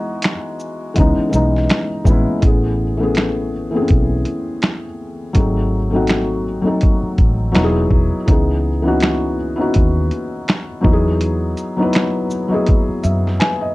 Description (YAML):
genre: lo-fi hip hop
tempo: 82 BPM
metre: 4/4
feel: swing 57% on 16ths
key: C# minor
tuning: A4 = 442 Hz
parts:
  - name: felt-muted upright piano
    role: accompaniment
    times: 0.0-13.7 s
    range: E3 to G#5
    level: -18 LUFS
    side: left 1 dB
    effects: cassette tape, low-pass filter
  - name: lo-fi sampler-style drum kit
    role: drums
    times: 0.2-13.6 s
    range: finger snaps, hi-hat, kick drum, shaker, snare drum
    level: -16 LUFS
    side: equal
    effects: none
  - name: vintage muted fingered electric bass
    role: bass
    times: 1.0-13.4 s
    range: E1 to F#2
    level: -19 LUFS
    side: equal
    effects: none
room: light reverb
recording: dark, warm production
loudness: -14 LUFS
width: side -20 dB against mid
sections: 0.0-2.4 A section; 2.4-13.7 B section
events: felt piano fill 12.7-13.7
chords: 0.0 Emaj7; 1.0 C#m9; 2.4 Amaj9; 5.4 G#7b9; 7.5 Emaj7; 8.3 C#m7; 10.8 Emaj7